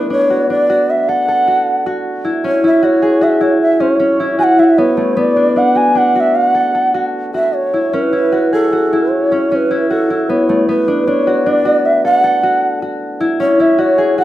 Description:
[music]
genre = contemporary instrumental, contemporary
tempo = 154 BPM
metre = 7/4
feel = straight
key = unclear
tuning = A4 = 440 Hz
[part]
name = mellow long shakuhachi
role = melody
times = 0.0-14.2 s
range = A4 to G#5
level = -14 LUFS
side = right 1 dB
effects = none
[part]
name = concert harp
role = arpeggios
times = 0.0-14.2 s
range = A3 to A4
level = -14 LUFS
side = equal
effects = none
[sound]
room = moderate recital hall reverb, RT60 1.4 s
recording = minimal, uncompressed stereo recording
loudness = -11 LUFS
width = side -14 dB against mid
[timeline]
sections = 0.0-14.2 A section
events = none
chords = 0.0 Bm7; 2.4 Amaj7; 5.2 Bm7; 7.9 Amaj7; 10.7 Bm7; 13.4 Amaj7

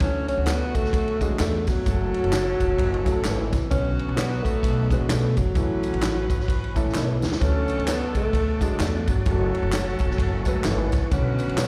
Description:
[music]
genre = uptempo 1960s-style soul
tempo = 130 BPM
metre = 4/4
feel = swing 60% on 8ths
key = unclear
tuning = A4 = 440 Hz
[part]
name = warm alto saxophone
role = melody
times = 0.0-11.7 s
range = E3 to C#4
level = -29 LUFS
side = equal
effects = slapback echo
[part]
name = warm horn section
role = second line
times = 0.0-11.7 s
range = D3 to B4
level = -38 LUFS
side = equal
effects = slapback echo
[part]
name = dark upright piano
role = accompaniment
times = 0.0-11.6 s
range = D3 to B4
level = -33 LUFS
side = equal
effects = none
[part]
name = upright bass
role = bass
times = 0.0-11.7 s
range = E1 to B2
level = -29 LUFS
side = equal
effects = none
[part]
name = vintage drum kit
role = drums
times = 0.0-11.7 s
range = hi-hat, kick drum, ride cymbal, snare drum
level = -28 LUFS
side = equal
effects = none
[part]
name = tambourine and handclaps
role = percussion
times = 0.0-11.7 s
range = none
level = -39 LUFS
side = equal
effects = none
[part]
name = mellow electric guitar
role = stabs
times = 0.5-11.7 s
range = E4 to D5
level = -36 LUFS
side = equal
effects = none
[part]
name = tonewheel organ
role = sustained chords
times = 7.4-11.7 s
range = A4 to D6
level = -42 LUFS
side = equal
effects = slow rotary speaker, overdrive, chorus vibrato
[sound]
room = small room reverb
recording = live gig heard through the venue's PA, recital hall reverb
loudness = -23 LUFS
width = mono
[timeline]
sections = 0.0-11.7 A section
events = drum fill 7.0-7.4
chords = 0.0 D; 1.9 F#m; 3.7 Bm; 5.6 A; 7.4 D; 9.3 F#m; 11.1 Bm

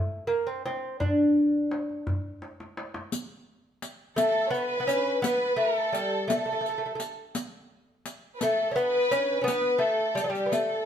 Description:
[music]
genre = Persian modal ensemble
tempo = 57 BPM (dotted quarters)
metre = 6/8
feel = straight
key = unclear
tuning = A4 = 440 Hz
[part]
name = lute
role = melody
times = 0.0-10.9 s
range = F#3 to D4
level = -25 LUFS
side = left 1 dB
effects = none
[part]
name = tombak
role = percussion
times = 0.3-3.1 s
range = none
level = -32 LUFS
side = equal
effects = none
[part]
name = riq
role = percussion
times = 3.1-10.7 s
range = none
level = -35 LUFS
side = left 2 dB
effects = none
[part]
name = warm studio violin section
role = second line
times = 4.2-10.9 s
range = G4 to C#5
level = -29 LUFS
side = right 1 dB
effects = none
[sound]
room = wet stone room reverb, RT60 1.2 s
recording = band playing live in one room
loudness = -24 LUFS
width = side -9 dB against mid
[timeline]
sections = 0.0-3.1 A section; 3.1-10.9 B section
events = drum fill 2.4-3.1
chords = none

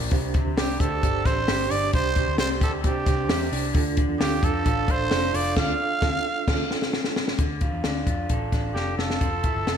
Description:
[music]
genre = jangly indie pop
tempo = 132 BPM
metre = 4/4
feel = straight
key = unclear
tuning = A4 = 439 Hz
[part]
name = mellow reed electric piano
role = accompaniment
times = 0.0-7.4 s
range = D4 to A5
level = -30 LUFS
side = right 9 dB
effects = fast tremolo
[part]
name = electric guitar through a small old amp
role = arpeggios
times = 0.0-9.8 s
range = Bb2 to Bb4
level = -31 LUFS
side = left 1 dB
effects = warbly pitch drift, slapback echo
[part]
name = vintage muted picked electric bass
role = bass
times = 0.0-9.8 s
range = F1 to C3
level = -30 LUFS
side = left 1 dB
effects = none
[part]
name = compact cocktail drum kit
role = drums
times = 0.1-9.8 s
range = crash cymbal, hi-hat, kick drum, snare drum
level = -25 LUFS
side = left 1 dB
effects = none
[part]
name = growling trumpet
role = melody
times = 0.6-9.8 s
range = G4 to F5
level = -27 LUFS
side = right 3 dB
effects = slapback echo, digital delay
[sound]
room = light reverb, small room ambience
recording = none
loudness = -21 LUFS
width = side -8 dB against mid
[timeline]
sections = 0.0-7.4 A section; 7.4-9.2 B section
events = band accent 5.6-7.4; drum fill 6.5-7.4, 8.8-9.2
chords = 0.1 Csus2; 3.8 Dm; 9.2 Fmaj7

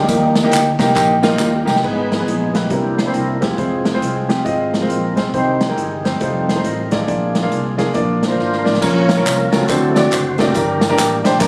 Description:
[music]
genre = uptempo gospel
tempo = 138 BPM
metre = 4/4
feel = swing 63% on 8ths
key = unclear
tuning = A4 = 440 Hz
[part]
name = warm baby grand piano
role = accompaniment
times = 0.0-11.5 s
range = G2 to F5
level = -20 LUFS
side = equal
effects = none
[part]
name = tonewheel organ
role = sustained chords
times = 0.0-11.5 s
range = Eb3 to D5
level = -23 LUFS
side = equal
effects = fast rotary speaker
[part]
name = fingered electric bass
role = bass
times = 0.1-11.5 s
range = E1 to Eb2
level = -26 LUFS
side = equal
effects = none
[part]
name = swinging big-band drum kit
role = drums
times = 0.1-11.5 s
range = crash cymbal, hi-hat, kick drum, snare drum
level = -23 LUFS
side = equal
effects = none
[part]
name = tambourine and handclaps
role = percussion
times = 0.1-1.7, 8.8-11.5 s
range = none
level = -27 LUFS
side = equal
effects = none
[sound]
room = light reverb, small room ambience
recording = recorded on a phone in the room, studio reverb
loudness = -17 LUFS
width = mono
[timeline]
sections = 0.0-1.8 A section; 1.8-8.8 B section; 8.8-11.5 A section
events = drum fill 1.4-1.8, 8.4-8.8; tonewheel organ solo 1.8-8.8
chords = 0.1 Eb; 1.8 Abm; 2.7 C7; 3.6 Fm; 5.3 Cm; 6.2 F7; 7.1 Bb; 8.8 Bbm; 9.7 D7; 10.6 Gm

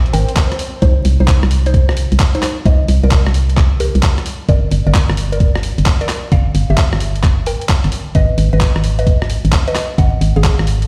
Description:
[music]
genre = UK garage, two-step garage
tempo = 131 BPM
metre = 4/4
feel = swing 66% on 16ths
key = C minor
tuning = A4 = 442 Hz
[part]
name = organ-like FM bass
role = bass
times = 0.0-10.9 s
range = G1 to C2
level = -16 LUFS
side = equal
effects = none
[part]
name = swell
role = sound effects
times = 0.0-0.8 s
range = none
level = -29 LUFS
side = equal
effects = none
[part]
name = mallet-like synth pluck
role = melody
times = 0.1-10.6 s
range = Eb4 to G5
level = -26 LUFS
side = equal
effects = chorus, phaser, dub echo
[part]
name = boom bap sampler-style drum kit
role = drums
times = 0.1-10.9 s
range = handclaps, hi-hat, rim click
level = -24 LUFS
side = equal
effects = studio reverb
[part]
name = electronic kick drum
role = drums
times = 0.4-10.6 s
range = none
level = -14 LUFS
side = equal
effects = studio reverb
[sound]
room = little or no reverb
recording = played on a big sound system in a bare room, stone room reverb, vinyl crackle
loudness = -14 LUFS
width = mono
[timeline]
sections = 0.0-10.9 A section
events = swell 0.0-0.8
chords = 0.0 Bb7(no3); 0.8 Cm; 4.3 Gm; 7.9 Abm

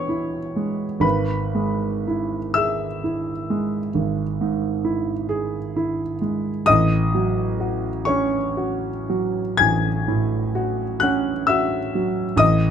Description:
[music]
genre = classical, romantic nocturne for solo piano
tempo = 38-46 BPM (dotted quarters)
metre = 12/8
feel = rubato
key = unclear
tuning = A4 = 441 Hz
[part]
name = warm concert grand piano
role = solo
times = 0.0-12.7 s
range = G#1 to G#6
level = -20 LUFS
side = equal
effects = none
[sound]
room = light reverb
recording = none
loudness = -20 LUFS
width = side -8 dB against mid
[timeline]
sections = 0.0-12.7 A section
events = none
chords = 0.0 E; 1.0 E/G#; 6.7 F#m/A

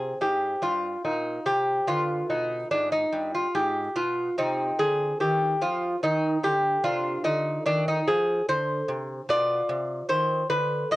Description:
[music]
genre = classical, baroque-style dance for lute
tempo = 72 BPM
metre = 3/4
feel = rubato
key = C minor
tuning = A4 = 441 Hz
[part]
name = lute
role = solo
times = 0.0-11.0 s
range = G2 to Eb5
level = -23 LUFS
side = equal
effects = cassette tape
[sound]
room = moderate small room reverb, RT60 0.5 s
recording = home recording on cassette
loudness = -23 LUFS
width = side -17 dB against mid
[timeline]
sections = 0.0-11.0 A section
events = none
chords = 0.0 Cm; 1.9 G; 4.4 Cmadd9; 9.3 Bdim

